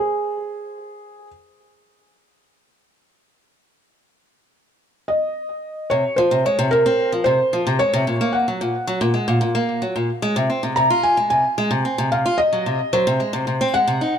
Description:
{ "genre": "folktronica", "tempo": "111 BPM", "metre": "4/4", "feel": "straight", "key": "unclear", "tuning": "A4 = 440 Hz", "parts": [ { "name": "felt-muted upright piano", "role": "melody", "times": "0.0-1.3, 5.1-14.2 s", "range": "Ab4 to Bb5", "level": "-20 LUFS", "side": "equal", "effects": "ping-pong delay" }, { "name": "picked old ladder-braced acoustic guitar", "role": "arpeggios", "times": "5.9-14.1 s", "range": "Bb2 to F4", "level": "-20 LUFS", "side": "equal", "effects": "ping-pong delay" } ], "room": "moderate small room reverb, RT60 0.5 s", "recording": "dark, warm production", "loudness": "-17 LUFS", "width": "side -8 dB against mid", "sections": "0.0-5.9 A section; 5.9-14.2 B section", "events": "none", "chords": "0.0 N.C.; 5.9 Bbmadd9/C; 8.1 Gb; 10.2 Fm; 12.4 Ab7" }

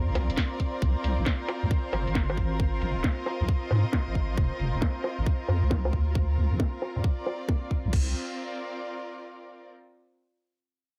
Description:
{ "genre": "UK garage, two-step garage", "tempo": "135 BPM", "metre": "4/4", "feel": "swing 65% on 16ths", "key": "C minor", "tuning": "A4 = 443 Hz", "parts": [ { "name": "warm analog pad", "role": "sustained chords", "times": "0.0-7.9 s", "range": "C5 to C6", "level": "-44 LUFS", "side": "equal", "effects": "chorus, vintage 12-bit sampler grit, sidechain pumping" }, { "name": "deep soft wobble bass", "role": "bass", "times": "0.0-8.1 s", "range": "D1 to Ab2", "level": "-29 LUFS", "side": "equal", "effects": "chorus" }, { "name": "dark chamber string section", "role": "texture", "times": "0.0-9.7 s", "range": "C4 to Eb5", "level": "-38 LUFS", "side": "equal", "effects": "sidechain pumping" }, { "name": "garage drum kit", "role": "drums", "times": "0.2-8.0 s", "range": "bongos, crash cymbal, finger snaps, hi-hat, snare drum", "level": "-35 LUFS", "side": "equal", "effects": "low-pass filter on hats, low-pass filter on snare, low-pass filter on perc, low-pass filter on cymbals, low-pass filter on room" }, { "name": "electronic kick drum", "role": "drums", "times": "0.4-8.0 s", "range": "none", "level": "-29 LUFS", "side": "equal", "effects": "none" } ], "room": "light reverb", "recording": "none", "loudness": "-28 LUFS", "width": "mono", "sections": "0.0-7.9 A section; 7.9-9.7 B section", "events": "filter sweep on drum 0.0-7.9", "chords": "0.0 Dm7; 0.8 C9sus4; 2.6 Abadd9; 4.4 F7(no3); 6.2 C9sus4" }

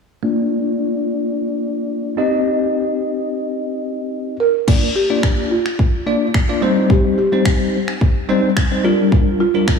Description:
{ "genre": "dance-pop", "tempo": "108 BPM", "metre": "4/4", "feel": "straight", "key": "Bb major", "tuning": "A4 = 438 Hz", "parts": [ { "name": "bell-like tine electric piano", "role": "accompaniment", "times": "0.2-9.8 s", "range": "G3 to Eb5", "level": "-18 LUFS", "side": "left 2 dB", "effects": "fast stereo tremolo, sidechain pumping, low-pass filter" }, { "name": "buzzing marimba with soft mallets", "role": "melody", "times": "4.4-9.8 s", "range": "F4 to Bb4", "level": "-20 LUFS", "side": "right 2 dB", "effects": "digital delay" }, { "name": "house drum kit", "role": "drums", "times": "4.7-9.8 s", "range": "crash cymbal, finger snaps, kick drum", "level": "-17 LUFS", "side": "equal", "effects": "soft clipping on snare" } ], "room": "moderate lush hall reverb, RT60 2.7 s", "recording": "blown-out, overdriven recording, overdrive, studio ambience", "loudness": "-15 LUFS", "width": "side -5 dB against mid", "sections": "0.2-4.7 A section; 4.7-9.8 B section", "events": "filter sweep on tine electric piano 0.2-4.7", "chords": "0.2 Bb; 2.2 Cm; 4.4 N.C.; 4.7 Bb; 6.6 Cm; 8.8 Gm7" }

